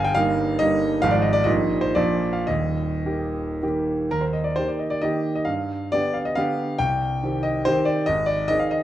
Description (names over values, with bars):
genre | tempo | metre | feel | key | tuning
classical, romantic triple-time dance for piano with dotted rhythms | 102-150 BPM | 3/4 | rubato | Eb major | A4 = 442 Hz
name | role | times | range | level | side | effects
warm concert grand piano | solo | 0.0-8.8 s | Eb1 to Ab5 | -20 LUFS | equal | none
room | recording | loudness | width
wet recital hall reverb, RT60 1.6 s | dark, warm production | -20 LUFS | side -12 dB against mid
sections
0.0-4.1 A section; 4.1-8.8 A section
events
none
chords
0.0 Eb/G; 1.0 Fm7/Ab; 1.5 Eb/Bb; 2.0 Bb; 2.5 Eb; 5.5 G7; 6.8 Cm; 8.1 Ab